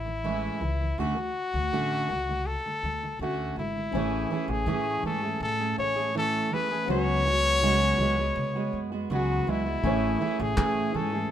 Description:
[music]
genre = acoustic pop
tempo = 81 BPM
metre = 4/4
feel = straight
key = A major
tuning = A4 = 438 Hz
[part]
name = clear trumpet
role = melody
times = 0.0-11.3 s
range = E4 to C#5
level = -28 LUFS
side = left 2 dB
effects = none
[part]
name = fingerpicked steel-string acoustic guitar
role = accompaniment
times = 0.0-11.3 s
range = A2 to G#4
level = -29 LUFS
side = right 3 dB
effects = none
[part]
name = upright bass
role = bass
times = 0.0-11.2 s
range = G#1 to C#3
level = -32 LUFS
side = left 1 dB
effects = none
[part]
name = felt-muted upright piano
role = accompaniment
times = 3.9-11.3 s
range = A3 to G#5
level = -36 LUFS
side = left 6 dB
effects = none
[part]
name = cloth-damped thuddy drum kit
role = drums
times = 9.8-10.7 s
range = handclaps, kick drum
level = -29 LUFS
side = left 1 dB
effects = none
[sound]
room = moderate studio reverb, RT60 0.8 s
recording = minimal, uncompressed stereo recording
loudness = -25 LUFS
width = side -10 dB against mid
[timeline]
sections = 0.0-3.9 A section; 3.9-11.3 B section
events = none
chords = 0.0 Amaj7; 1.0 Dmaj7; 3.9 Amaj7; 6.9 C#7sus4; 9.8 Amaj7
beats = 0.24 | 0.98 1.72 2.46 3.20 | 3.94 4.68 5.41 6.15 | 6.89 7.63 8.36 9.10 | 9.84 10.57 11.31

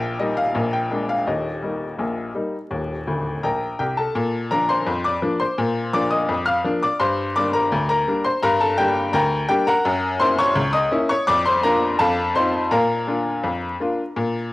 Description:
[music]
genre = ragtime piano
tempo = 84 BPM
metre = 2/4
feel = straight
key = Eb major, Bb major from 4.2 s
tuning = A4 = 440 Hz
[part]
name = bright upright piano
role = solo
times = 0.0-14.5 s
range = D1 to F6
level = -19 LUFS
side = left 1 dB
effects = cassette tape
[sound]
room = light reverb, small room ambience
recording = home recording on cassette, vinyl crackle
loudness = -18 LUFS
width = side -18 dB against mid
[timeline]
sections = 0.0-4.2 A section; 4.2-14.5 B section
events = upright piano fill 3.1-4.2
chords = 0.0 Eb/Bb; 0.6 Bb7; 1.3 Eb; 4.2 Bb; 7.0 Gm; 9.9 Gb7; 11.3 Bb/F; 12.0 F7; 12.7 Bb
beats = 0.56 | 1.27 1.99 | 2.71 3.44 | 4.15 4.87 | 5.59 6.30 | 7.01 7.72 | 8.43 9.14 | 9.85 10.56 | 11.28 11.99 | 12.71 13.44 | 14.16

